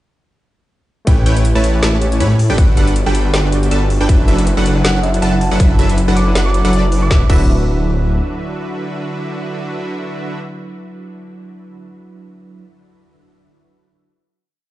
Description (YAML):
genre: future bass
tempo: 159 BPM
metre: 4/4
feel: swing 56% on 16ths, half-time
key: D major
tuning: A4 = 440 Hz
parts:
  - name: barky tine electric piano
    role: accompaniment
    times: 1.1-12.6 s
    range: F#3 to D5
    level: -25 LUFS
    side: right 2 dB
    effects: auto-pan, sidechain pumping, tape echo
  - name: wide unison pluck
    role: arpeggios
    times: 1.1-10.4 s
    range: D5 to B5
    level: -29 LUFS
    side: right 1 dB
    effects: sidechain pumping
  - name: supersaw stab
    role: riff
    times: 1.1-10.4 s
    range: D3 to B5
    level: -20 LUFS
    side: right 1 dB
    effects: sidechain pumping
  - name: wide detuned saw bass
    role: bass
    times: 1.1-8.2 s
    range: D1 to A2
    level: -15 LUFS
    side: equal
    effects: chorus, sidechain pumping
  - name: electronic kick drum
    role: drums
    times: 1.1-7.4 s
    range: none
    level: -12 LUFS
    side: equal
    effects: none
  - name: trap drum kit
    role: drums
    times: 1.1-7.4 s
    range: crash cymbal, hi-hat, snare drum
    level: -23 LUFS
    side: equal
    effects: none
  - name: thumb-piano-like synth pluck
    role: melody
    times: 4.8-7.1 s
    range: E5 to D6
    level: -25 LUFS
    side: equal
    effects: chorus, sidechain pumping, digital delay
room: little or no reverb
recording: played on a big sound system in a bare room, stone room reverb, nothing above 10.3 kHz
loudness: -12 LUFS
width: side -16 dB against mid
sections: 1.1-7.1 drop; 7.1-10.1 final chord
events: drop 1.1-7.1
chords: 1.1 A9; 2.4 Gmaj7; 4.1 D69/F#; 7.1 D69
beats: | 1.07 1.45 1.82 2.20 | 2.58 2.96 3.33 3.71 | 4.09 4.47 4.84 5.22 | 5.60 5.98 6.35 6.73 | 7.11 7.49 7.86 8.24 | 8.62 8.99 9.37 9.75